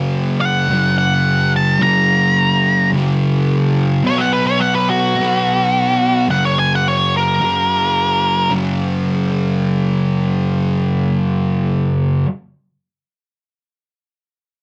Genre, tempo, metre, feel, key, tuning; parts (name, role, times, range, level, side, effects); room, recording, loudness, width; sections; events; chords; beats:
rock; 107 BPM; 4/4; straight; F# major; A4 = 441 Hz
fuzz guitar; riff; 0.0-12.3 s; F#2 to B3; -18 LUFS; equal; distortion
octave-fuzz lead guitar; melody; 0.4-8.5 s; F#4 to A#5; -18 LUFS; equal; distortion
light reverb; -16 LUFS; mono
0.0-8.5 A section; 8.5-10.8 B section
0.0 F#; 4.0 B5; 6.3 F#5
0.12 0.68 1.24 | 1.80 2.36 2.92 3.48 | 4.04 4.61 5.17 5.73 | 6.29 6.85 7.41 7.97 | 8.53 9.09 9.64 10.20